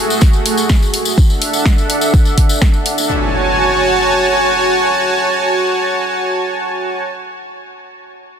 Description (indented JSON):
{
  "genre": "progressive house",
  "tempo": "125 BPM",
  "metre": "4/4",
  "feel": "straight",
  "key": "F# minor",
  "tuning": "A4 = 440 Hz",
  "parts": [
    { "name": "supersaw pad", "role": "sustained chords", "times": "0.0-7.0 s", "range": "A3 to A5", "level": "-15 LUFS", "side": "right 1 dB", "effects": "sidechain pumping, low-pass filter" },
    { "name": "tambourine", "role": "percussion", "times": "0.1-3.1 s", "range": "none", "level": "-23 LUFS", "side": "left 4 dB", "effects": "none" },
    { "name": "electronic kick drum", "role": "drums", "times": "0.2-2.7 s", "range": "none", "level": "-11 LUFS", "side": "equal", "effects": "none" },
    { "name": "house drum kit", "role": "drums", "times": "0.2-3.0 s", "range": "hi-hat, snare drum", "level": "-22 LUFS", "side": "equal", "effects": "none" },
    { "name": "impact", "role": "sound effects", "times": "3.1-7.1 s", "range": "none", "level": "-24 LUFS", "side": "equal", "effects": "none" }
  ],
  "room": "light reverb",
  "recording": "dense, heavily limited modern master",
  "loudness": "-12 LUFS",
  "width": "side -8 dB against mid",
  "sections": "0.0-3.1 A section; 3.1-6.9 B section",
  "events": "none",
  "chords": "0.0 F#madd9; 1.2 Dadd9; 3.1 F#madd9"
}